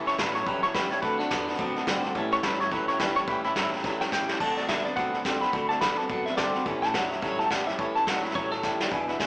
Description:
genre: rockabilly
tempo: 213 BPM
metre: 4/4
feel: swing 59% on 8ths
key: A mixolydian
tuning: A4 = 441 Hz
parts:
  - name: picked steel-string acoustic guitar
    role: accompaniment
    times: 0.0-9.3 s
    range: E2 to F#4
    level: -33 LUFS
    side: left 1 dB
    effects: none
  - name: twangy electric guitar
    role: riff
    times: 0.0-9.3 s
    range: E2 to C4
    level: -32 LUFS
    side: right 1 dB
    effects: none
  - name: upright bass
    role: bass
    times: 0.0-9.3 s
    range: E1 to A2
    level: -43 LUFS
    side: equal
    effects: none
  - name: electric guitar at the edge of break-up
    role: melody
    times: 0.1-8.8 s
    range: D4 to B5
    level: -28 LUFS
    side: equal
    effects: tremolo
  - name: bright upright piano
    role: accompaniment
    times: 0.1-9.3 s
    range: B4 to B5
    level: -36 LUFS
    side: equal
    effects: none
  - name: vintage brush drum kit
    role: drums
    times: 0.1-9.3 s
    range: crash cymbal, hi-hat, kick drum, snare drum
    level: -30 LUFS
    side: equal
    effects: none
room: moderate large studio reverb, RT60 0.9 s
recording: band playing live in one room, small speaker sound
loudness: -24 LUFS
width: side -27 dB against mid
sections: 0.0-9.3 A section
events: drum fill 3.8-4.4, 8.6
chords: 0.0 A7; 1.0 D7; 2.2 A7; 4.4 D7; 6.7 A7

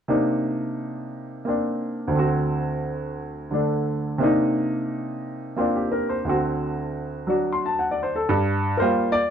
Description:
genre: solo jazz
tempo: 117 BPM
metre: 4/4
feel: swing 68% on 8ths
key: unclear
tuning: A4 = 440 Hz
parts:
  - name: clear baby grand piano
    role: solo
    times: 0.1-9.3 s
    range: D2 to C6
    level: -22 LUFS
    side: equal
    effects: none
room: moderate club reverb, RT60 0.7 s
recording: dark, warm production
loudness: -22 LUFS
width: side -8 dB against mid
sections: 0.1-8.3 A section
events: none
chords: 0.1 Cm9; 2.1 D7; 4.2 Cm9; 6.3 D7; 8.3 Gm7

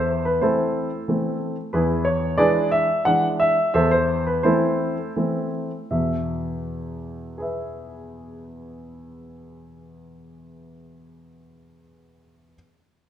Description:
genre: classical-period piano sonatina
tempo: 79-92 BPM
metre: 3/4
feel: rubato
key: E major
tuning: A4 = 440 Hz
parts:
  - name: warm grand piano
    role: solo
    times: 0.0-12.6 s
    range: E2 to F#5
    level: -20 LUFS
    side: equal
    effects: none
room: moderate recital hall reverb, RT60 1.6 s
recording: none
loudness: -20 LUFS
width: side -10 dB against mid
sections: 0.0-5.9 A section; 5.9-10.3 B section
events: slowing down 0.7-5.9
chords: 0.0 Am/E; 1.7 E7; 3.7 Am/E; 5.9 E

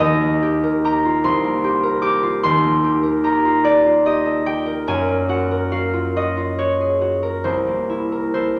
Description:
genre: classical, solo harp piece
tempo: 44-51 BPM (dotted quarters)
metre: 6/8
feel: rubato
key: unclear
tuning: A4 = 440 Hz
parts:
  - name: concert harp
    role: solo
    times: 0.0-8.6 s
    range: C2 to D6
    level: -19 LUFS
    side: equal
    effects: none
room: wet recital hall reverb, RT60 1.6 s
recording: none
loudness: -19 LUFS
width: mono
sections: 0.0-8.6 A section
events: none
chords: 0.0 Ebmaj7; 1.2 Cm7; 2.4 Eb69; 4.9 Gbadd9; 7.5 C7

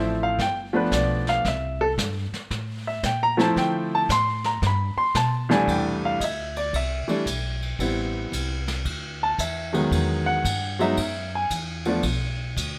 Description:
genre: jazz piano trio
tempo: 113 BPM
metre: 4/4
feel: swing 66% on 8ths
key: C major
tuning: A4 = 438 Hz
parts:
  - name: warm baby grand piano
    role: melody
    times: 0.0-12.0 s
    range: C2 to C6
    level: -26 LUFS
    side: equal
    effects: none
  - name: upright bass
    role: bass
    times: 0.0-12.8 s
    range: G1 to D3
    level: -31 LUFS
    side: equal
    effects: none
  - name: vintage brush drum kit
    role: drums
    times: 0.4-12.7 s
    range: brushed snare drum, hi-hat, kick drum, ride cymbal, snare drum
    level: -33 LUFS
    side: equal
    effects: none
room: light reverb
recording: none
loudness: -25 LUFS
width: mono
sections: 0.0-5.7 A section; 5.7-12.8 A section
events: grand piano solo 0.0-12.8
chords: 0.4 G9; 1.4 C5; 2.5 A5; 3.6 Dm7; 4.6 G; 5.7 C69; 7.8 Am7; 8.9 Dsus2; 9.9 Emaj9; 12.0 Bm

